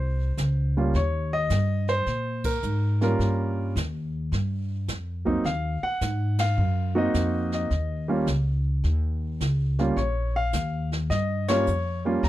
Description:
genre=jazz piano trio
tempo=106 BPM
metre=4/4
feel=swing 67% on 8ths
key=Eb mixolydian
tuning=A4 = 440 Hz
part: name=warm grand piano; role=melody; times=0.0-12.3 s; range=Gb3 to Bb5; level=-26 LUFS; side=equal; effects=none
part: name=upright bass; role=bass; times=0.0-12.3 s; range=Bb1 to Bb2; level=-25 LUFS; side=equal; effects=none
part: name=jazz brush drum kit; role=drums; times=0.4-12.3 s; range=brushed snare drum, crash cymbal, hi-hat, kick drum, ride cymbal, snare drum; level=-34 LUFS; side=right 1 dB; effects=none
room=little or no reverb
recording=dry, close 1970s-style studio recording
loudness=-23 LUFS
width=side -14 dB against mid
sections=0.0-12.3 A section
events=band accent 2.4, 6.3, 11.4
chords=0.0 N.C.; 0.9 Eb7; 5.5 Ab7; 7.7 Eb7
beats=0.38 | 0.95 1.51 2.08 2.64 | 3.20 3.77 4.33 4.89 | 5.46 6.02 6.59 7.15 | 7.71 8.28 8.85 9.41 | 9.97 10.54 11.11 11.67 | 12.23

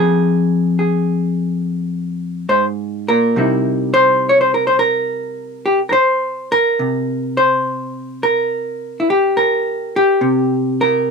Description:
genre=solo jazz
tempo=70 BPM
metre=4/4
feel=swing 69% on 8ths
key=unclear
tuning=A4 = 439 Hz
part: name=vintage hollow-body jazz guitar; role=solo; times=0.0-11.1 s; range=F2 to Db5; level=-14 LUFS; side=equal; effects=none
room=moderate booth ambience, RT60 0.2 s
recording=dry, close 1970s-style studio recording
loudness=-14 LUFS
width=side -5 dB against mid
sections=0.0-11.1 A section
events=none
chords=0.0 Fm; 3.3 C7#9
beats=0.77 1.63 2.49 | 3.35 4.20 5.06 5.92 | 6.77 7.63 8.49 9.35 | 10.20 11.06

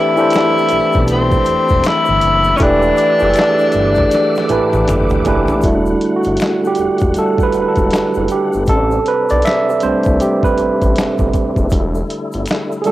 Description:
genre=R&B, neo-soul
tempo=79 BPM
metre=4/4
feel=swing 61% on 16ths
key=E minor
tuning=A4 = 439 Hz
part: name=warm tenor saxophone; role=melody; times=0.0-4.9 s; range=C4 to E4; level=-14 LUFS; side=left 2 dB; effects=cassette tape
part: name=barky tine electric piano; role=accompaniment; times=0.0-12.9 s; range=E3 to E5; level=-15 LUFS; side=right 2 dB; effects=overdrive, auto-pan, cassette tape
part: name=tonewheel organ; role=sustained chords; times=0.0-12.9 s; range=C3 to D6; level=-24 LUFS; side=left 1 dB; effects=fast rotary speaker, chorus vibrato, cassette tape
part: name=egg shaker and finger snaps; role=percussion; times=0.2-12.9 s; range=none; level=-36 LUFS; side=left 5 dB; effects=none
part: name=boom bap sampler-style drum kit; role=drums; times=0.3-12.9 s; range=handclaps, hi-hat, kick drum, snare drum, toms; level=-19 LUFS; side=equal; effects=cassette tape
part: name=smooth synth bass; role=bass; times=0.7-12.5 s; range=E1 to C2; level=-20 LUFS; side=equal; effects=none
room=light reverb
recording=home recording on cassette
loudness=-12 LUFS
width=side -15 dB against mid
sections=0.0-5.6 A section; 5.6-12.9 B section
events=drum fill 4.1-5.6; tine electric piano solo 5.6-12.9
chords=0.0 Am9; 2.6 Em9; 5.6 Em11; 8.7 Am11; 11.7 Em11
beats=0.32 1.08 1.84 | 2.60 3.36 4.12 4.88 | 5.64 6.40 7.16 7.92 | 8.68 9.44 10.20 10.95 | 11.71 12.47

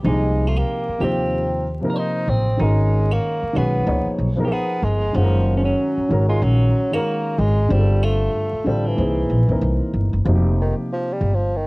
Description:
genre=hip hop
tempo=94 BPM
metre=4/4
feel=swing 60% on 16ths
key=unclear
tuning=A4 = 440 Hz
part: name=dark concert grand piano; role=accompaniment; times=0.0-11.3 s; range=C3 to Gb5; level=-23 LUFS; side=equal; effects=plate reverb
part: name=upright bass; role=bass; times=0.0-11.7 s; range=F1 to Eb2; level=-19 LUFS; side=equal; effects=transformer saturation
part: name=warm bassoon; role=melody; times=0.1-11.7 s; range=Eb3 to Eb4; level=-24 LUFS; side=equal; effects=cassette tape
part: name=semi-hollow electric guitar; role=second line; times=0.1-9.9 s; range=C4 to C5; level=-28 LUFS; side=right 1 dB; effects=spring reverb, plate reverb
room=light reverb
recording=home recording on cassette, vinyl crackle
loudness=-17 LUFS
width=side -25 dB against mid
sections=0.0-10.3 A section; 10.3-11.7 B section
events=bassoon solo 10.3-11.7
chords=0.0 Cm7; 2.6 Abm7; 3.9 Db7; 5.1 Gb; 7.7 Gsus2; 9.0 C7alt; 10.3 Fsus2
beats=| 0.04 0.68 1.31 1.95 | 2.59 3.23 3.87 4.51 | 5.14 5.78 6.42 7.06 | 7.70 8.34 8.97 9.61 | 10.25 10.89 11.53

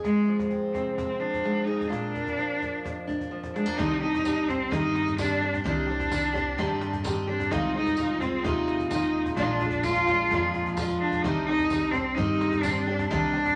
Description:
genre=indie folk with a building arrangement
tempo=129 BPM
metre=4/4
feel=straight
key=C minor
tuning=A4 = 441 Hz
part: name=rich cello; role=melody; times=0.0-13.6 s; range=Ab3 to F4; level=-29 LUFS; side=equal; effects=none
part: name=fingerpicked steel-string acoustic guitar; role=accompaniment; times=0.0-3.8 s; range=F2 to Ab4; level=-31 LUFS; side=equal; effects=none
part: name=cajon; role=drums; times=0.0-13.6 s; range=none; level=-40 LUFS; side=equal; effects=none
part: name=picked twelve-string acoustic guitar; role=accompaniment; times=3.8-13.6 s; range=Bb2 to G4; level=-32 LUFS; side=equal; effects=none
part: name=upright bass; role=bass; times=3.8-13.6 s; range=Bb1 to G2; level=-35 LUFS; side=equal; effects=none
part: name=tambourine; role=percussion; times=4.3-12.7 s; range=none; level=-44 LUFS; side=equal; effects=none
room=moderate studio reverb, RT60 0.6 s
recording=none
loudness=-27 LUFS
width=mono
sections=0.0-3.8 A section; 3.8-13.6 B section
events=none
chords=0.0 Fm; 1.9 Bb; 3.8 Cmadd9; 7.5 Ab6/C; 9.4 Bb7; 11.2 Cmadd9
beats=| 0.04 0.51 0.98 1.45 | 1.92 2.38 2.85 3.32 | 3.79 4.26 4.72 5.19 | 5.66 6.12 6.59 7.05 | 7.52 7.98 8.45 8.91 | 9.38 9.84 10.31 10.78 | 11.24 11.71 12.17 12.64 | 13.10

